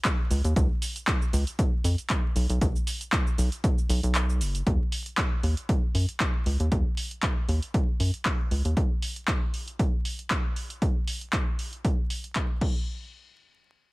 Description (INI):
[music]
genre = deep house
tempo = 117 BPM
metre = 4/4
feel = swing 54% on 16ths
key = Eb minor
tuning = A4 = 444 Hz
[part]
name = punchy analog drum machine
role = drums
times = 0.0-12.7 s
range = crash cymbal, handclaps, hi-hat, shaker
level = -31 LUFS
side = equal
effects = none
[part]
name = electronic kick drum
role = drums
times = 0.1-12.7 s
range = none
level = -26 LUFS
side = equal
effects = none
[part]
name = rubbery square bass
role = bass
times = 0.3-8.7 s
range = F#1 to Gb2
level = -24 LUFS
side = equal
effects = sidechain pumping
[sound]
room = little or no reverb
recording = vinyl crackle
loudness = -24 LUFS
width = side -22 dB against mid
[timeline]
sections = 0.0-4.7 A section; 4.7-12.9 B section; 12.9-13.9 C section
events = drop 0.0-4.7; kick drops out 4.2-4.7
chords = none